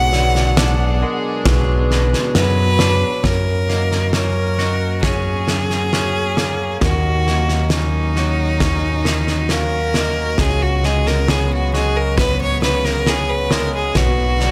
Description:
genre	post-rock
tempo	67 BPM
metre	4/4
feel	straight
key	F# major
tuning	A4 = 440 Hz
part	bright violin	melody	0.0-14.5 s	D#4 to F#5	-23 LUFS	equal	tape echo
part	rich chamber string section	sustained chords	0.0-14.5 s	C#3 to G#4	-32 LUFS	equal	none
part	twangy electric guitar	arpeggios	0.0-14.5 s	F#2 to F#4	-29 LUFS	equal	warbly pitch drift, tape echo
part	vibraphone with medium mallets	arpeggios	0.0-14.5 s	A#4 to F#5	-30 LUFS	equal	tape echo
part	growling fingered electric bass	bass	0.0-14.5 s	B1 to F#2	-21 LUFS	equal	overdrive
part	loose indie drum kit	drums	0.1-14.5 s	kick drum, snare drum	-23 LUFS	equal	none
room	light reverb, small room ambience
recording	none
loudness	-17 LUFS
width	mono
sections	0.0-3.2 A section; 3.2-14.5 B section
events	none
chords	0.0 Bm6; 3.2 F#; 6.8 D#m7; 10.4 C#7sus4; 14.0 Bm6

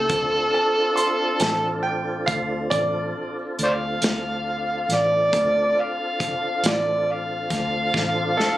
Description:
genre	slow blues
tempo	46 BPM (dotted quarters)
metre	12/8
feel	straight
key	D minor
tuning	A4 = 438 Hz
part	overdriven harmonica	melody	0.0-8.6 s	A4 to F5	-22 LUFS	equal	none
part	tonewheel organ	sustained chords	0.0-8.6 s	C4 to A4	-29 LUFS	equal	slow rotary speaker, chorus vibrato
part	vintage muted fingered electric bass	bass	0.0-8.3 s	A1 to D2	-31 LUFS	left 1 dB	none
part	natural country drum kit	drums	0.1-8.6 s	hi-hat, kick drum, snare drum	-25 LUFS	equal	none
part	bright upright piano	second line	0.5-8.6 s	A4 to C6	-25 LUFS	right 1 dB	none
room	light reverb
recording	recorded on a phone in the room, club reverb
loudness	-20 LUFS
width	side -15 dB against mid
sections	0.0-8.6 A section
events	drum fill 7.9-8.6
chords	0.1 Dm7

